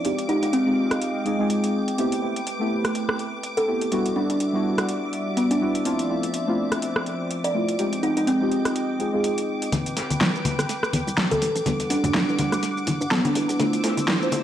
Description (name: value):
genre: deep house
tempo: 124 BPM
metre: 4/4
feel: swing 57% on 16ths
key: A minor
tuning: A4 = 438 Hz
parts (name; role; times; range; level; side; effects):
- warm analog pad; sustained chords; 0.0-14.4 s; F3 to E6; -31 LUFS; equal; chorus
- deep mellow chord stab; stabs; 0.0-14.4 s; G3 to C5; -26 LUFS; equal; chorus, tape echo
- deep house drum kit; drums; 0.0-14.4 s; hi-hat, rim click, shaker, snare drum; -27 LUFS; equal; vintage 12-bit sampler grit, studio reverb
- string machine, violins; texture; 0.0-14.4 s; D6; -35 LUFS; left 1 dB; ensemble chorus
- kalimba; melody; 0.3-13.7 s; B3 to D5; -26 LUFS; equal; vintage 12-bit sampler grit, analog delay
- analog pluck; arpeggios; 9.7-14.4 s; E3 to A4; -32 LUFS; right 2 dB; chorus, analog delay
- organ-like FM bass; bass; 9.7-14.0 s; G1 to G2; -30 LUFS; equal; tube saturation, high-pass filter
- dusty soul sampler-style drum kit; drums; 9.7-14.4 s; hi-hat, snare drum; -35 LUFS; left 1 dB; none
- congas; percussion; 9.7-14.4 s; none; -29 LUFS; left 3 dB; none
room: moderate lush hall reverb, RT60 1.6 s, digital ambience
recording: cassette tape, high-pass filter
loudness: -21 LUFS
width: side -10 dB against mid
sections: 0.0-9.7 A section; 9.7-14.4 B section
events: filter sweep on analog synth pad 0.0-9.7; build-up 9.7-14.4; filter sweep on synth arpeggio sound 9.7-14.4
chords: 0.0 Fm9; 2.0 Am9; 3.9 Em9; 5.9 Dm9; 7.8 Fm9; 9.7 Am9; 11.7 Em9; 13.6 Dm9